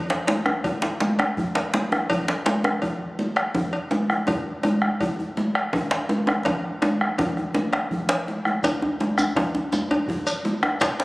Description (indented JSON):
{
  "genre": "west african traditional, West African drum ensemble",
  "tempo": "110 BPM (dotted quarters)",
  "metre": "12/8",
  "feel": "straight",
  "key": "none",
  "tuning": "none",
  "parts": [
    { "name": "djembe", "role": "percussion", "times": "0.1-11.0 s", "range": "none", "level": "-25 LUFS", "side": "equal", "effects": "none" },
    { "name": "congas", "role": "percussion", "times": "0.3-11.0 s", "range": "none", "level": "-27 LUFS", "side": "equal", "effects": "none" },
    { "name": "cowbell", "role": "percussion", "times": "0.3-11.0 s", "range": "none", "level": "-30 LUFS", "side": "left 1 dB", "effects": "none" },
    { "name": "djembe", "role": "percussion", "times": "0.3-11.0 s", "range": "none", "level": "-32 LUFS", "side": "left 1 dB", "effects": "none" },
    { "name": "bombo", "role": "percussion", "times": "0.5-11.0 s", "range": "none", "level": "-27 LUFS", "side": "equal", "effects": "none" },
    { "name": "shekere", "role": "percussion", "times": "8.6-11.0 s", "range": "none", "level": "-34 LUFS", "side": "equal", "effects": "none" }
  ],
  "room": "wet concert hall reverb, RT60 1.9 s",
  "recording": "recorded on a phone in the room, club reverb",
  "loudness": "-21 LUFS",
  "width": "side -22 dB against mid",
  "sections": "0.0-8.6 A section; 8.6-11.0 B section",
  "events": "drum fill 6.5-8.6",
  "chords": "none"
}